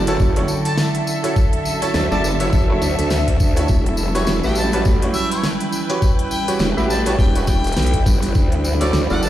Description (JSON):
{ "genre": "glitch hop", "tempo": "103 BPM", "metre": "4/4", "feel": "swing 58% on 16ths", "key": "E dorian", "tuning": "A4 = 442 Hz", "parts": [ { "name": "warbly tape-like pad", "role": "sustained chords", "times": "0.0-9.3 s", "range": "D3 to G4", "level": "-27 LUFS", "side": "right 1 dB", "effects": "chorus, built-in reverb, vintage 12-bit sampler grit, sidechain pumping" }, { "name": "bright baby grand piano", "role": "stabs", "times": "0.0-9.3 s", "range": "E4 to E5", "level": "-25 LUFS", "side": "right 2 dB", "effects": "sidechain pumping, digital delay" }, { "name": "growl bass", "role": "bass", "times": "0.0-9.3 s", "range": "E1 to D2", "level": "-20 LUFS", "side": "equal", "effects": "chorus, overdrive" }, { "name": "dark studio string section", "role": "texture", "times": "0.0-9.3 s", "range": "D3 to G5", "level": "-25 LUFS", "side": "right 1 dB", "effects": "sidechain pumping" }, { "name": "warm harmonica", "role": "melody", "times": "0.1-9.3 s", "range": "C#5 to A5", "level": "-27 LUFS", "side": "left 2 dB", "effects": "digital delay" }, { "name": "pop drum kit", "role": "drums", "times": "0.1-9.1 s", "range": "hi-hat, snare drum", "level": "-25 LUFS", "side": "equal", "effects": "small room ambience" }, { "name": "tambourine", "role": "percussion", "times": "0.1-9.3 s", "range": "none", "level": "-30 LUFS", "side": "left 2 dB", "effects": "none" }, { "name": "electronic kick drum", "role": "drums", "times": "0.2-8.5 s", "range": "none", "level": "-16 LUFS", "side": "equal", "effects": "small room ambience" } ], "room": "light reverb", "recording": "played on a big sound system in a bare room, stone room reverb", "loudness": "-16 LUFS", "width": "side -13 dB against mid", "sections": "0.0-9.3 A section", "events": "none", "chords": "0.0 Dmaj9; 3.7 Em69; 8.4 Dmaj9" }